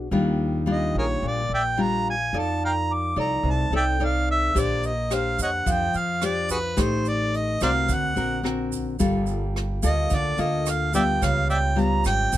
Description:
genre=bossa nova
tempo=108 BPM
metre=4/4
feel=straight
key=Bb major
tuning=A4 = 440 Hz
part: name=nylon-string guitar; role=accompaniment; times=0.0-12.4 s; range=Ab2 to D5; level=-26 LUFS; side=left 3 dB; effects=none
part: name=upright bass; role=bass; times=0.0-12.4 s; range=G1 to F2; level=-27 LUFS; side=right 1 dB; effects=none
part: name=mellow harmonica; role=melody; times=0.7-12.4 s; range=Gb4 to D6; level=-25 LUFS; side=right 2 dB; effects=none
part: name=jazz brush drum kit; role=drums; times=4.6-12.4 s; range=hi-hat, kick drum, rim click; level=-30 LUFS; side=right 1 dB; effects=none
part: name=tube shaker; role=percussion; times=4.6-12.4 s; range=none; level=-36 LUFS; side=right 11 dB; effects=none
room=little or no reverb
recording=close, detailed microphones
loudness=-21 LUFS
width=side -13 dB against mid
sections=0.0-12.4 A section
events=harmonica solo 0.0-12.4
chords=0.1 Ebmaj9; 2.3 F6; 4.6 Bb69; 6.8 Am7b5; 7.9 Daug7; 9.0 Gm9; 11.2 Db7#11

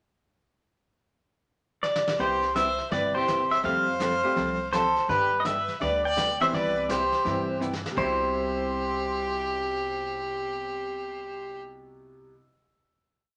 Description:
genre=country, western swing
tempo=167 BPM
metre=4/4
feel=swing 64% on 8ths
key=C major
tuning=A4 = 441 Hz
part: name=pedal steel guitar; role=melody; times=1.8-11.6 s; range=B4 to G5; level=-28 LUFS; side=equal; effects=none
part: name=vintage brush drum kit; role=drums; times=1.8-8.3 s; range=brushed snare drum, crash cymbal, hi-hat, kick drum, snare drum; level=-40 LUFS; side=equal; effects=none
part: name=clear fiddle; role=second line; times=2.2-11.6 s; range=G4 to D5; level=-32 LUFS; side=equal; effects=none
part: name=vintage hollow-body jazz guitar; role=accompaniment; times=2.2-12.4 s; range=C3 to A4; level=-37 LUFS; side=equal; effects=none
part: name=upright bass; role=bass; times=2.2-12.3 s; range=G1 to G2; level=-42 LUFS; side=equal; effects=none
part: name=bright upright piano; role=accompaniment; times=3.1-12.4 s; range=B2 to G4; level=-38 LUFS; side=equal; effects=none
room=wet studio reverb, RT60 0.6 s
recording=none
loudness=-27 LUFS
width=mono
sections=0.7-2.2 pickup bar; 2.2-8.0 A section; 8.0-10.8 final chord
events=drum fill 1.8-2.2, 7.6-8.0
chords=0.7 N.C.; 2.2 Cmaj7; 3.6 Fadd9; 5.1 G; 6.5 Cmaj7

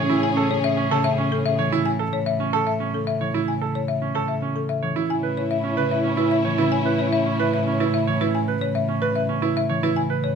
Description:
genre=classical, minimalist pattern music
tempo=111 BPM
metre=3/4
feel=straight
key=A major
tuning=A4 = 440 Hz
part: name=clear French horn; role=second line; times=0.0-1.6, 5.1-8.1 s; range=C#4 to E4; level=-27 LUFS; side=right 1 dB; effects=none
part: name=concert harp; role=accompaniment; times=0.0-10.4 s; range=C#3 to C#4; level=-28 LUFS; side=left 2 dB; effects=none
part: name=warm symphonic violin section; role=sustained chords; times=0.0-1.7, 5.1-8.2 s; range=C#4 to G#4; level=-28 LUFS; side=left 5 dB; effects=none
part: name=bright concert grand piano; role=arpeggios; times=0.0-10.3 s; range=C#4 to C#5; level=-25 LUFS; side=right 8 dB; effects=none
part: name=warm cello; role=bass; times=0.0-10.4 s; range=A2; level=-28 LUFS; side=right 4 dB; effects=none
part: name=folk marimba with medium hard mallets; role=melody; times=0.2-10.4 s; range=A4 to G#5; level=-27 LUFS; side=left 10 dB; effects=none
room=moderate large studio reverb, RT60 1.1 s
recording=faint mains hum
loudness=-20 LUFS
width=side -6 dB against mid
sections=0.0-10.4 A section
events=none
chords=0.0 Amaj7; 5.1 C#m7/A

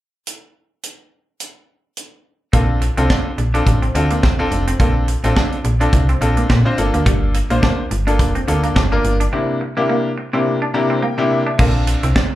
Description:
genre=early-eighties boogie funk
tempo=106 BPM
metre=4/4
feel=swing 56% on 16ths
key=unclear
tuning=A4 = 442 Hz
part: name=tight funk drum kit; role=drums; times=0.3-12.3 s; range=crash cymbal, hi-hat, kick drum, snare drum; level=-18 LUFS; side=equal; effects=none
part: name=bright concert grand piano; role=accompaniment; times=2.5-12.1 s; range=C3 to Bb5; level=-20 LUFS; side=left 1 dB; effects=plate reverb, slapback echo
part: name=electric guitar at the edge of break-up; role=riff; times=2.5-12.3 s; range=G3 to D4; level=-24 LUFS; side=right 2 dB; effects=wide subtle chorus, slapback echo
part: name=slap-like FM bass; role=bass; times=2.5-12.1 s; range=F1 to Bb2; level=-17 LUFS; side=equal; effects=none
room=light reverb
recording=live gig heard through the venue's PA, club reverb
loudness=-14 LUFS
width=side -14 dB against mid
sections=0.3-2.5 A section; 2.5-11.6 B section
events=grand piano fill 10.5-11.6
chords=0.3 N.C.; 2.5 Bbmaj7; 6.8 Gm7; 9.3 C7; 11.6 Bbmaj7

